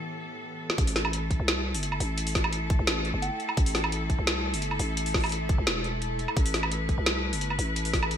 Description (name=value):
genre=half-time drum and bass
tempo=172 BPM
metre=4/4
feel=half-time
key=A minor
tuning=A4 = 436 Hz
part: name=rich studio cello section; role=sustained chords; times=0.0-8.2 s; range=A2 to B4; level=-34 LUFS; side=left 1 dB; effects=sidechain pumping
part: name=metallic inharmonic drone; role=texture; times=0.0-8.2 s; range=A4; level=-40 LUFS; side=left 2 dB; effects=chorus, built-in reverb
part: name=drum and bass drum kit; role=drums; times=0.7-8.2 s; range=hi-hat, snare drum, woodblock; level=-28 LUFS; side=equal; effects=gated reverb
part: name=growling 808-style bass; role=bass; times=0.8-8.2 s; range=E1 to C2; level=-30 LUFS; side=equal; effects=none
part: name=electronic kick drum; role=drums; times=0.8-8.0 s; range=none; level=-26 LUFS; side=equal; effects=none
part: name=soft synth bell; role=melody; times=3.2-3.6 s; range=G5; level=-39 LUFS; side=right 3 dB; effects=chorus, phaser, vintage 12-bit sampler grit, ping-pong delay
room=light reverb, digital ambience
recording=bright 1980s-style digital production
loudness=-25 LUFS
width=side -9 dB against mid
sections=0.8-8.2 A section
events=break 0.1-0.8; drum fill 0.6; drop 0.8-8.2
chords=0.0 A5